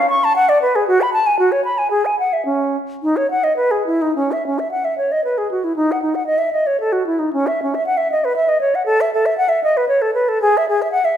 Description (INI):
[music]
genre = classical, baroque-style fantasia for unaccompanied flute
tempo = 101-120 BPM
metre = 3/4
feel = rubato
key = C# minor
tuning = A4 = 440 Hz
[part]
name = concert flute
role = solo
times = 0.0-11.2 s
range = C#4 to C#6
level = -15 LUFS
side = equal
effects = none
[sound]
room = moderate recital hall reverb, RT60 1.5 s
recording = minimal, uncompressed stereo recording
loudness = -15 LUFS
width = side -9 dB against mid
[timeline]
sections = 0.0-4.2 A section; 4.2-11.2 B section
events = none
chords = none